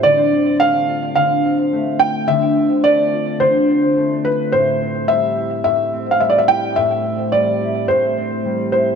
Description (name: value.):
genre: folktronica.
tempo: 107 BPM.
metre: 4/4.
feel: straight.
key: A minor.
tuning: A4 = 440 Hz.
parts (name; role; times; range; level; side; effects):
felt-muted upright piano; melody; 0.0-9.0 s; B4 to G5; -16 LUFS; right 1 dB; tape echo.
concert harp; arpeggios; 0.0-9.0 s; A2 to F4; -18 LUFS; left 1 dB; tape echo.
room: moderate plate reverb, RT60 3.1 s.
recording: none.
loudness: -14 LUFS.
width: side -6 dB against mid.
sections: 0.0-9.0 A section.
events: none.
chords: 0.0 Dm7; 4.5 Am7.